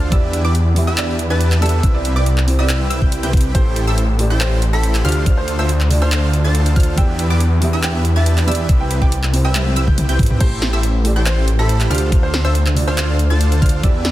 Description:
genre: future bass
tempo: 140 BPM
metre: 4/4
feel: half-time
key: unclear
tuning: A4 = 441 Hz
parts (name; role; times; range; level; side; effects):
- felt-muted upright piano; accompaniment; 0.0-14.1 s; C3 to E5; -24 LUFS; right 2 dB; sidechain pumping, tape echo
- wide unison pluck; arpeggios; 0.0-14.1 s; D6 to B6; -29 LUFS; equal; sidechain pumping, tape echo
- supersaw chords; riff; 0.0-14.1 s; C4 to B5; -25 LUFS; equal; sidechain pumping, tape echo
- wide detuned saw bass; bass; 0.0-14.1 s; A1 to E2; -16 LUFS; equal; chorus, sidechain pumping
- clear grand piano; melody; 0.1-14.1 s; G4 to G5; -27 LUFS; right 2 dB; sidechain pumping, tape echo
- dubstep drum kit; drums; 0.1-14.1 s; crash cymbal, handclaps, hi-hat, snare drum, toms; -23 LUFS; equal; small room reverb, soft clipping on snare
- electronic kick drum; drums; 0.1-13.9 s; none; -15 LUFS; equal; small room reverb
room: digital ambience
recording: dense, heavily limited modern master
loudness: -13 LUFS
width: side -15 dB against mid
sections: 0.0-14.1 A section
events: drum fill 9.5-10.4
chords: 0.1 Em7; 1.8 Cmaj7; 3.5 Am7; 5.0 Dm7; 7.0 Em7; 8.7 Cmaj7; 10.4 Am7; 11.9 Dm7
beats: | 0.12 0.55 0.98 1.41 | 1.83 2.26 2.69 3.12 | 3.55 3.98 4.41 4.83 | 5.26 5.69 6.12 6.55 | 6.98 7.41 7.83 8.26 | 8.69 9.12 9.55 9.98 | 10.41 10.83 11.26 11.69 | 12.12 12.55 12.98 13.41 | 13.83

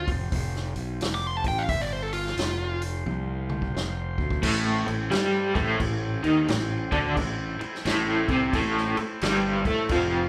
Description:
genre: blues rock power trio and southern rock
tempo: 88 BPM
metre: 4/4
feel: swing 64% on 8ths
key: A minor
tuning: A4 = 439 Hz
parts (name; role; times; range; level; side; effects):
- bluesy overdriven lead guitar; melody; 0.0-2.8 s; F4 to D6; -32 LUFS; equal; distortion
- overdriven tonewheel organ; sustained chords; 0.0-10.3 s; A3 to F5; -41 LUFS; equal; slow rotary speaker
- fuzz fingered electric bass; bass; 0.0-10.3 s; F1 to A2; -33 LUFS; equal; overdrive
- vintage drum kit; drums; 0.1-10.1 s; crash cymbal, hi-hat, kick drum, snare drum, toms; -33 LUFS; equal; none
- crunchy overdriven guitar; riff; 4.4-10.3 s; F2 to A4; -26 LUFS; equal; tremolo
room: moderate large studio reverb, RT60 0.9 s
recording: band playing live in one room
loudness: -26 LUFS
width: mono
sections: 0.0-4.4 A section; 4.4-10.3 B section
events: lead electric guitar solo 0.0-4.4; drum fill 3.1-4.4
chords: 0.0 F5; 4.4 Am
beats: 0.34 1.02 | 1.70 2.38 3.07 3.75 | 4.43 5.12 5.80 6.49 | 7.17 7.85 8.54 9.22 | 9.90

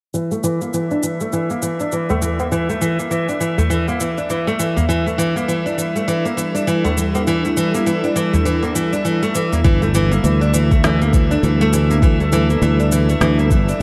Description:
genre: organic downtempo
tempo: 101 BPM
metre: 4/4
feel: swing 59% on 16ths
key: G dorian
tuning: A4 = 444 Hz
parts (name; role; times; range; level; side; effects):
- nylon-string guitar; arpeggios; 0.1-13.8 s; E3 to D4; -21 LUFS; equal; low-pass filter, tape echo, shimmer reverb
- electronic cabasa and snare drum; drums; 0.1-13.8 s; none; -29 LUFS; equal; overdrive, studio reverb
- drifting glass-harmonics texture; texture; 0.4-13.8 s; E5; -31 LUFS; equal; chorus, built-in reverb, shimmer reverb
- tabla; percussion; 0.7-9.6 s; none; -25 LUFS; equal; none
- warm analog pad; sustained chords; 4.9-13.8 s; G3 to A4; -26 LUFS; equal; chorus, sidechain pumping, shimmer reverb
- sustaining fretless electric bass; bass; 9.6-13.8 s; G1 to D2; -18 LUFS; equal; none
- electronic kick drum; drums; 9.6-13.6 s; none; -17 LUFS; equal; overdrive, studio reverb
room: moderate huge ambient reverb, RT60 4.1 s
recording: dark, warm production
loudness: -18 LUFS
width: mono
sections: 0.1-9.6 A section; 9.6-13.8 B section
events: filter sweep on nylon-string guitar 0.1-9.6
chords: 0.1 Gm69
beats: | 0.14 0.74 1.33 1.93 | 2.52 3.11 3.71 4.30 | 4.89 5.49 6.08 6.68 | 7.27 7.87 8.46 9.05 | 9.65 10.24 10.84 11.43 | 12.02 12.62 13.21 13.81

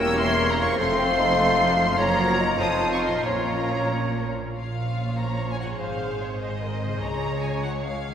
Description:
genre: classical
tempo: 90-101 BPM (dotted quarters)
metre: 6/8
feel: rubato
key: Bb minor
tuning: A4 = 440 Hz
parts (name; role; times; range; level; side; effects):
- rich symphonic violin section; melody; 0.0-8.1 s; Db5 to E6; -28 LUFS; left 2 dB; none
- clear clarinet; second line; 0.0-4.3 s; F4 to Bb4; -32 LUFS; left 2 dB; none
- clear oboe; second line; 0.0-4.3 s; C5 to Db5; -30 LUFS; right 1 dB; none
- mellow hollow silver concert flute; second line; 0.0-4.3 s; C#5 to A5; -27 LUFS; left 1 dB; none
- rich studio violin section; second line; 0.0-8.1 s; C4 to Db5; -34 LUFS; left 2 dB; none
- mellow bassoon; accompaniment; 0.0-4.2 s; A3 to Gb4; -30 LUFS; right 3 dB; none
- rich symphonic viola section; accompaniment; 0.0-8.1 s; F3 to Db5; -33 LUFS; right 1 dB; none
- dark French horn section; sustained chords; 0.0-8.1 s; F3 to Db4; -32 LUFS; left 2 dB; none
- concert harp; arpeggios; 0.0-8.1 s; F2 to Db5; -33 LUFS; left 1 dB; none
- clear symphonic double bass section; bass; 0.0-8.1 s; E1 to Db2; -32 LUFS; right 2 dB; none
- rich symphonic cello section; bass; 0.0-8.1 s; Db2 to Bb2; -32 LUFS; right 1 dB; none
room: wet scoring stage reverb, RT60 1.9 s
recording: recorded in a church or concert hall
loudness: -21 LUFS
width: side -8 dB against mid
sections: 0.0-4.6 A section; 4.6-8.1 A section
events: none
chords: 0.0 Edim7; 0.8 F; 2.0 Gbmaj7; 2.6 F7; 3.3 Bbm; 5.8 Ab; 7.0 Db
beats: 0.18 | 0.78 1.39 | 1.99 2.61 | 3.26 3.91 | 4.56 5.18 | 5.79 6.41 | 7.02 7.63

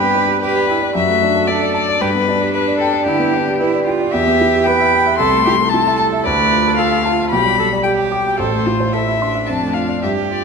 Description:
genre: quick classical-period movement for piano trio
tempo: 113 BPM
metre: 4/4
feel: rubato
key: unclear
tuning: A4 = 441 Hz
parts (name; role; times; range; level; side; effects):
- warm violin; melody; 0.0-10.4 s; G4 to C6; -17 LUFS; left 6 dB; none
- rich cello; second line; 0.0-10.4 s; D4 to B4; -19 LUFS; right 9 dB; none
- warm concert grand piano; accompaniment; 0.0-10.4 s; A1 to D6; -18 LUFS; equal; none
room: wet scoring stage reverb, RT60 2.2 s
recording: none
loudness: -13 LUFS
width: side -5 dB against mid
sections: 0.0-10.4 A section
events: none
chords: 0.0 G; 1.0 D/F#; 2.0 G; 4.1 Em; 5.2 Am/C; 6.3 Dm; 7.3 G/B; 8.4 Am; 9.5 Dm/F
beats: 0.43 0.95 1.48 | 2.01 2.54 3.07 3.60 | 4.13 4.66 5.20 5.73 | 6.26 6.79 7.32 7.85 | 8.39 8.93 9.47 10.02

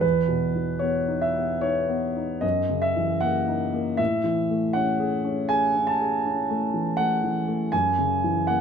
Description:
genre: classical, impressionist solo piano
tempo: 73-82 BPM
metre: 5/4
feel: rubato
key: unclear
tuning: A4 = 442 Hz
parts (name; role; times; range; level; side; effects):
- warm concert grand piano; solo; 0.0-8.6 s; E2 to A5; -22 LUFS; equal; none
room: moderate stone room reverb, RT60 1.2 s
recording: none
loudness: -22 LUFS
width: side -7 dB against mid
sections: 0.0-8.6 A section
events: none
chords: 0.0 E5; 2.4 F#6; 4.0 Amaj7; 7.7 F#9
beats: | 0.03 0.81 1.63 2.43 3.22 | 3.99 4.74 5.49 6.24 6.98 | 7.73 8.48

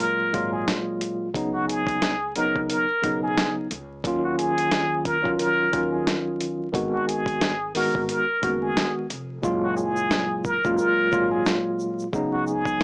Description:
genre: hip hop, boom-bap hip-hop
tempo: 89 BPM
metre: 4/4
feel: swing 57% on 16ths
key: unclear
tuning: A4 = 440 Hz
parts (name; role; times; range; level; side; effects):
- trumpet with plunger mute; melody; 0.0-12.8 s; Gb4 to Bb4; -24 LUFS; equal; high-pass filter, low-pass filter
- tine electric piano; accompaniment; 0.0-12.8 s; Bb2 to Gb4; -24 LUFS; equal; medium stereo tremolo, cassette tape, high-pass filter, low-pass filter
- dusty soul sampler-style drum kit; drums; 0.0-12.8 s; hi-hat, kick drum, snare drum; -26 LUFS; equal; none
- upright bass; bass; 0.3-12.8 s; F1 to Eb2; -36 LUFS; equal; none
- egg shaker; percussion; 9.4-12.8 s; none; -44 LUFS; equal; none
room: light reverb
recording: vinyl crackle, small speaker sound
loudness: -21 LUFS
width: side -30 dB against mid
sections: 0.0-9.4 A section; 9.4-12.8 B section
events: hi-hats muted 9.4-12.8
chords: 0.0 Gbmaj9; 1.3 Db9sus4; 4.0 Ebm9; 6.7 Abm7; 9.4 Gbmaj9; 12.1 Db9sus4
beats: 0.00 0.67 | 1.34 2.02 2.69 3.37 | 4.04 4.71 5.39 6.06 | 6.74 7.41 8.09 8.76 | 9.43 10.11 10.78 11.46 | 12.13 12.80

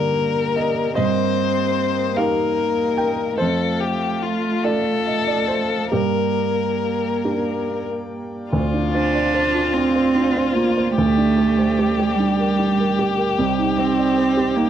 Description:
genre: neoclassical piano and strings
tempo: 46-51 BPM (dotted quarters)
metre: 6/8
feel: rubato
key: G minor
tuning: A4 = 443 Hz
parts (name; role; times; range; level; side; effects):
- rich violin; melody; 0.0-14.7 s; F4 to C5; -23 LUFS; left 7 dB; none
- warm cello; second line; 0.0-14.7 s; G3 to D4; -22 LUFS; right 4 dB; none
- dark baby grand piano; accompaniment; 0.0-14.7 s; C2 to G5; -22 LUFS; right 3 dB; none
- pedal harmonium; sustained chords; 0.0-14.7 s; G3 to F5; -30 LUFS; left 2 dB; none
room: light reverb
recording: dry, close 1970s-style studio recording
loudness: -17 LUFS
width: side -10 dB against mid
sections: 0.0-8.5 A section; 8.5-14.7 B section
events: none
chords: 0.0 Gm; 1.0 Eb/G; 3.4 F; 5.9 Gm; 8.5 Dm7; 10.9 Gm/D; 13.4 Cm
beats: | 0.97 2.17 | 3.39 4.64 | 5.93 7.24 | 8.52 9.74 | 10.95 12.17 | 13.37 14.56

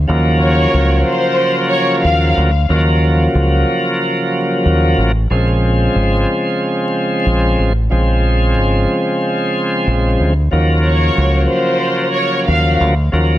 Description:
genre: hip hop, boom-bap hip-hop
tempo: 92 BPM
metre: 4/4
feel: swing 60% on 16ths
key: Bb minor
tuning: A4 = 440 Hz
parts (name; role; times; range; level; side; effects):
- deep dub fingered electric bass; bass; 0.0-13.4 s; Ab1 to Eb2; -14 LUFS; equal; none
- bright tonewheel organ; accompaniment; 0.1-13.4 s; Db3 to C4; -15 LUFS; equal; overdrive, slow rotary speaker, cassette tape, high-pass filter, low-pass filter
- warm studio violin section; melody; 0.4-2.3, 10.8-12.8 s; C5 to F5; -18 LUFS; equal; high-pass filter, low-pass filter, ping-pong delay
room: small room ambience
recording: vinyl crackle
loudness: -12 LUFS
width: side -14 dB against mid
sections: 0.0-5.3 A section; 5.3-13.4 B section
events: none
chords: 0.1 Ebm9; 5.3 Bbm7; 10.5 Ebm9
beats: | 0.09 0.74 1.39 2.04 | 2.69 3.35 4.00 4.65 | 5.30 5.95 6.61 7.26 | 7.91 8.56 9.21 9.87 | 10.52 11.17 11.82 12.48 | 13.13

